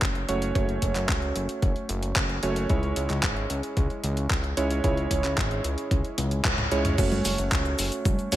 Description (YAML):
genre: italo disco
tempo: 112 BPM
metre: 4/4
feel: straight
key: F# minor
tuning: A4 = 440 Hz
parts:
  - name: warm electric grand piano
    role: stabs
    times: 0.0-8.4 s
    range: G#3 to C#5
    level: -29 LUFS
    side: right 2 dB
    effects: ping-pong delay
  - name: fat analog bass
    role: bass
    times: 0.0-8.4 s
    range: F#1 to C#2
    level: -29 LUFS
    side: equal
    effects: none
  - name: clean 12-bit digital drum machine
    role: drums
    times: 0.0-8.4 s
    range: cabasa, congas, crash cymbal, handclaps, hi-hat, toms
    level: -29 LUFS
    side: equal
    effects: small room ambience, gated reverb
  - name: electronic kick drum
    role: drums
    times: 0.0-8.2 s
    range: none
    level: -27 LUFS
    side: equal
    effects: overdrive, small room ambience
room: light reverb, digital ambience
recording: none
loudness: -23 LUFS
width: side -14 dB against mid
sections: 0.0-7.0 A section; 7.0-8.4 B section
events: drum fill 6.2-7.0; band accent 6.4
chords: 0.0 F#m; 2.7 C#m; 7.0 F#m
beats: 0.02 | 0.55 1.09 1.62 2.16 | 2.70 3.23 3.77 4.30 | 4.84 5.38 5.91 6.45 | 6.98 7.52 8.05